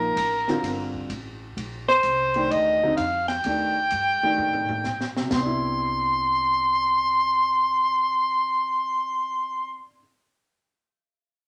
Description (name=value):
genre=modal jazz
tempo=128 BPM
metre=4/4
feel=swing 66% on 8ths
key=C major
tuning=A4 = 440 Hz
part: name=warm soprano saxophone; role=melody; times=0.0-9.8 s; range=Bb4 to C6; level=-24 LUFS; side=equal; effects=none
part: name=warm baby grand piano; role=accompaniment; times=0.0-10.0 s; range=C3 to Bb4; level=-32 LUFS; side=equal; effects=none
part: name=upright bass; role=bass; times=0.0-9.8 s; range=G1 to Bb2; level=-40 LUFS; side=equal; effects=none
part: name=open jazz drum kit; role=drums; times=0.2-5.5 s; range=hi-hat, kick drum, ride cymbal, snare drum, splash cymbal, toms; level=-36 LUFS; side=equal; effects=none
room=wet studio reverb, RT60 0.6 s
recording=none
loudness=-23 LUFS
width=mono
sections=0.0-5.3 A section; 5.3-9.1 B section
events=drum fill 4.4-5.3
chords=0.0 Ebmaj9; 5.3 Cmaj9